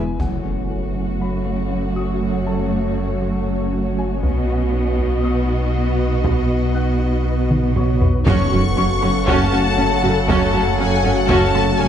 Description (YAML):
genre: cinematic, hybrid orchestral and electronic film score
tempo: 119 BPM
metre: 4/4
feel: straight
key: F# dorian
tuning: A4 = 441 Hz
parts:
  - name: warm studio violin section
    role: second line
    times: 0.0-11.9 s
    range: F#4 to F#5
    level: -28 LUFS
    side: left 4 dB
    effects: none
  - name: rich symphonic viola section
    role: accompaniment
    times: 0.0-11.9 s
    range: A3 to F#4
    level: -25 LUFS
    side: right 1 dB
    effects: low-pass filter
  - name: ethereal airy pad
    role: sustained chords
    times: 0.0-11.9 s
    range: F#3 to C#5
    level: -27 LUFS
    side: left 1 dB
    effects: ensemble chorus, built-in reverb, low-pass filter
  - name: thumb-piano-like synth pluck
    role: arpeggios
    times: 0.0-11.9 s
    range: F#3 to B4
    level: -28 LUFS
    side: left 1 dB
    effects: none
  - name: punchy sub bass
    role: bass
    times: 0.0-11.9 s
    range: E1 to B1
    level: -23 LUFS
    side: equal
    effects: none
  - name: rich symphonic cello section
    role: bass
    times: 0.0-11.9 s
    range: F#2 to B2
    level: -23 LUFS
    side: right 3 dB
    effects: none
  - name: rich symphonic double bass section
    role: bass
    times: 0.0, 8.3-11.9 s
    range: F#1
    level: -24 LUFS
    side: right 3 dB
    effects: none
  - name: bright baby grand piano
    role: texture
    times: 0.0-11.9 s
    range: F#4 to F#6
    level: -34 LUFS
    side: left 4 dB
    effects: tape echo
  - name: clear symphonic violin section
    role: melody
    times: 0.2-11.9 s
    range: C#5 to C#6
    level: -27 LUFS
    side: left 4 dB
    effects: low-pass filter
  - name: solo taiko drums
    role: drums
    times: 0.2-1.2, 4.2-11.8 s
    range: none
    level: -23 LUFS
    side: equal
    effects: none
  - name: impact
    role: sound effects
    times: 0.2-2.2, 8.3-10.3 s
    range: none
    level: -27 LUFS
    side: equal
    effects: none
  - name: bright trombone section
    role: sustained chords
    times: 8.3-11.9 s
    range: C#3 to F#3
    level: -24 LUFS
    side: right 3 dB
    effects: low-pass filter
  - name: mellow French horn section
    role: sustained chords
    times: 8.3-11.9 s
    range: A3 to F#4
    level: -31 LUFS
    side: left 3 dB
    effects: none
room: moderate scoring stage reverb, RT60 1.9 s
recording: dark, warm production, nothing above 10.8 kHz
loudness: -16 LUFS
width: side -9 dB against mid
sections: 0.2-8.3 A section; 8.3-11.9 B section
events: impact 0.2-2.2, 8.3-10.3; filter sweep 0.2-8.3; drum fill 7.5-8.3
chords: 0.2 F#m; 4.2 B; 8.3 F#m